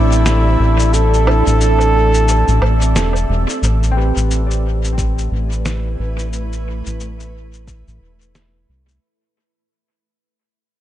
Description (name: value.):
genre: ambient dub.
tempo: 89 BPM.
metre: 4/4.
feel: swing 59% on 16ths.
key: A minor.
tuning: A4 = 440 Hz.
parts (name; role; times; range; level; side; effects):
warm trombone; melody; 0.0-3.3 s; E4 to A4; -19 LUFS; right 1 dB; dub echo.
granular cloud pad; sustained chords; 0.0-9.0 s; A3 to E5; -26 LUFS; right 2 dB; built-in reverb.
bright tine electric piano; stabs; 0.0-6.6 s; C4 to B4; -26 LUFS; right 1 dB; medium stereo tremolo, dub echo.
round analog bass; bass; 0.0-9.0 s; E1 to C2; -15 LUFS; equal; none.
bubbling stepped-filter texture; texture; 0.0-3.6 s; A3 to A4; -28 LUFS; equal; chorus, built-in reverb.
electronic cabasa, snare drum and woodblock; drums; 0.1-9.0 s; none; -24 LUFS; equal; dub echo.
concert harp; arpeggios; 3.9-6.9 s; C4 to D5; -30 LUFS; left 6 dB; analog delay.
electronic kick drum; drums; 5.0-7.8 s; none; -24 LUFS; equal; overdrive.
room: little or no reverb.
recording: echo-heavy mix, nothing above 10.9 kHz.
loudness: -13 LUFS.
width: side -12 dB against mid.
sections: 0.0-3.6 A section; 3.6-9.0 B section.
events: kick drops out 0.9-3.6; fade-out 3.6-9.0; filter sweep on analog synth bass 3.6-9.0.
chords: 0.0 C6; 3.6 Am7.